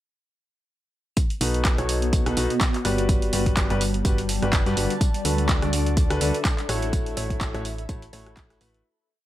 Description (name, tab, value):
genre	piano house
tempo	125 BPM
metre	4/4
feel	swing 56% on 16ths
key	unclear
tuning	A4 = 437 Hz
part	dusty soul sampler-style drum kit	drums	1.2-8.7 s	hi-hat, snare drum, tambourine	-37 LUFS	right 1 dB	none
part	electronic kick drum	drums	1.2-8.5 s	none	-23 LUFS	equal	none
part	punchy analog drum machine	drums	1.2-8.8 s	handclaps, hi-hat, rim click	-29 LUFS	right 1 dB	none
part	granular cloud pad	texture	2.0-8.9 s	G3 to B5	-30 LUFS	equal	built-in reverb, sidechain pumping
part	clear grand piano	riff	1.4-8.8 s	B2 to D5	-28 LUFS	left 1 dB	sidechain pumping, dub echo
part	solid FM bass	bass	1.4-8.8 s	G1 to G2	-26 LUFS	equal	sidechain pumping
room	light reverb, digital ambience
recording	none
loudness	-21 LUFS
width	side -14 dB against mid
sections	1.2-8.8 groove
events	fade-out 6.3-8.8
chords	1.2 B7; 2.9 Gmaj7; 5.0 D6; 6.7 A6